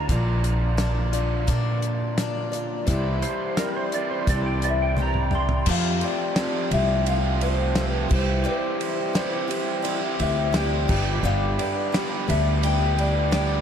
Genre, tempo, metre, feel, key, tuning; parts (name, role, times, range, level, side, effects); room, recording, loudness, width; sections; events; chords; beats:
folk rock and heartland rock; 86 BPM; 4/4; straight; A4 = 440 Hz
pedal steel guitar; second line; 0.0-5.7 s; Bb4 to C6; -33 LUFS; right 4 dB; ensemble chorus
picked swing-style acoustic guitar; accompaniment; 0.0-13.6 s; G2 to D5; -31 LUFS; left 7 dB
pedal harmonium; sustained chords; 0.0-13.6 s; E4 to C6; -35 LUFS; right 3 dB
crunchy overdriven guitar; riff; 0.0-13.6 s; F2 to G4; -30 LUFS; right 2 dB
upright bass; bass; 0.0-13.6 s; G1 to Bb2; -24 LUFS; equal
damped 70s drum kit; drums; 0.1-13.5 s; crash cymbal, hi-hat, kick drum, ride cymbal, snare drum, toms; -28 LUFS; equal
electric guitar through a small old amp; melody; 4.6-13.6 s; C5 to G5; -28 LUFS; left 2 dB; lush chorus, analog delay
moderate huge ambient reverb, RT60 8.4 s; dreamy mix soaked in reverb; -21 LUFS; side -8 dB against mid
0.0-5.7 A section; 5.7-13.6 B section
pedal steel guitar solo 0.0-5.7; drum fill 5.0-5.7
0.1 Bb; 2.9 Cadd9; 5.7 Fadd9; 8.1 C; 10.9 G
| 0.10 0.80 1.50 2.19 | 2.89 3.59 4.28 4.98 | 5.67 6.37 7.07 7.76 | 8.46 9.15 9.85 10.54 | 11.24 11.93 12.62 13.32